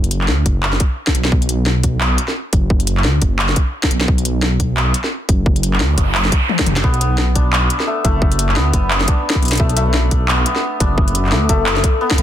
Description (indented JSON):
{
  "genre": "half-time drum and bass",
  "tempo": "174 BPM",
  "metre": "4/4",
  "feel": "swing 58% on 16ths, half-time",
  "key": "B minor",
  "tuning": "A4 = 441 Hz",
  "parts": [
    { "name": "dark detuned saw bass", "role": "bass", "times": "0.0-12.2 s", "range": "F#1 to D2", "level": "-17 LUFS", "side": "equal", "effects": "none" },
    { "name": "industrial drum kit", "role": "drums", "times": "0.0-12.2 s", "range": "handclaps, hi-hat, snare drum, toms", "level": "-19 LUFS", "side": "left 1 dB", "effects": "none" },
    { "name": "electronic kick drum", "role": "drums", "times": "0.5-12.2 s", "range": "none", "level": "-16 LUFS", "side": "equal", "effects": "overdrive" },
    { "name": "noise sweep", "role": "sound effects", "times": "5.7-6.8 s", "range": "none", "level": "-24 LUFS", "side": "right 3 dB", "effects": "none" },
    { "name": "santur", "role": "arpeggios", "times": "6.8-12.2 s", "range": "A3 to D4", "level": "-20 LUFS", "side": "left 2 dB", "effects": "tape echo" }
  ],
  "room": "light reverb",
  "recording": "dense, heavily limited modern master",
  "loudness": "-14 LUFS",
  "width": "side -11 dB against mid",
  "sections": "0.0-12.2 A section",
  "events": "noise sweep 5.7-6.8; drum fill 6.5-6.8",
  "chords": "0.0 B5"
}